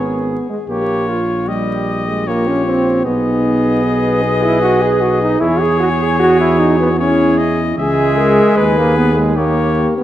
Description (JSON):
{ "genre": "classical, brass quintet", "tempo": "76 BPM", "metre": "3/4", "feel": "straight", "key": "G# minor", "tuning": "A4 = 440 Hz", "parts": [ { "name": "bright trumpet", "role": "melody", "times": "0.0-9.9 s", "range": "B4 to E5", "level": "-22 LUFS", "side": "left 5 dB", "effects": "none" }, { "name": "mellow trumpet", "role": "second line", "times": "0.0-9.9 s", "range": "E#4 to G#4", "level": "-22 LUFS", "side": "right 3 dB", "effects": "none" }, { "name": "mellow French horn", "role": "accompaniment", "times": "0.0-10.0 s", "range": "D#4 to B4", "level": "-20 LUFS", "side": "left 2 dB", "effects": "none" }, { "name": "mellow trombone", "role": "accompaniment", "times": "0.0-10.0 s", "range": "G3 to G#4", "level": "-16 LUFS", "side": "right 1 dB", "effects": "none" }, { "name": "mellow tuba", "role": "bass", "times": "0.0-9.9 s", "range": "G#1 to E2", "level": "-18 LUFS", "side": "right 1 dB", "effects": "none" } ], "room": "moderate concert hall reverb, RT60 2.1 s", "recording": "vinyl crackle", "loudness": "-12 LUFS", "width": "side -12 dB against mid", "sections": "0.0-10.0 A section", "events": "none", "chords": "0.0 G#m; 0.7 Gdim/Bb; 3.1 G#m/B; 5.4 C#m/E; 7.8 C#m; 8.6 G#m/D#; 9.4 D#7" }